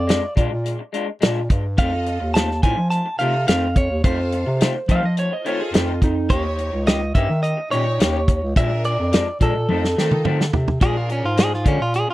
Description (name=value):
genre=straight-eighth soul blues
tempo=106 BPM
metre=4/4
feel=straight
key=unclear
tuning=A4 = 441 Hz
part: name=direct-recorded clean electric guitar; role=melody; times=0.0-12.1 s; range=Db4 to A5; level=-24 LUFS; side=right 1 dB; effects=spring reverb
part: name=mellow bass clarinet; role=bass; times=0.0-12.1 s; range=Db2 to F3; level=-22 LUFS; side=equal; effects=none
part: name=electric guitar through a small old amp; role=stabs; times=0.1-12.1 s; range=Eb3 to G4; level=-27 LUFS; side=left 4 dB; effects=tape echo
part: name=warm soul drum kit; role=drums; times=0.1-12.1 s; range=hi-hat, kick drum, snare drum, toms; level=-18 LUFS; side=equal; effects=none
part: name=clear symphonic string section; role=sustained chords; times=1.8-11.4 s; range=D4 to F5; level=-33 LUFS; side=equal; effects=none
part: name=electric slide guitar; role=second line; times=4.9-6.3 s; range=Eb4 to F5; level=-25 LUFS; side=right 3 dB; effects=none
room=little or no reverb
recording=dry, close 1970s-style studio recording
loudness=-17 LUFS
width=side -16 dB against mid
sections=0.0-10.8 A section; 10.8-12.1 B section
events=drum fill 9.7-10.8; clean electric guitar solo 10.8-12.1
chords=0.0 Bb7; 1.8 F7; 6.3 Eb7; 8.6 Bb7; 9.7 F7; 10.8 Bb7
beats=0.08 0.65 1.21 | 1.78 2.35 2.91 3.48 | 4.04 4.61 5.17 5.74 | 6.30 6.87 7.43 7.99 | 8.56 9.12 9.68 10.25 | 10.81 11.38 11.94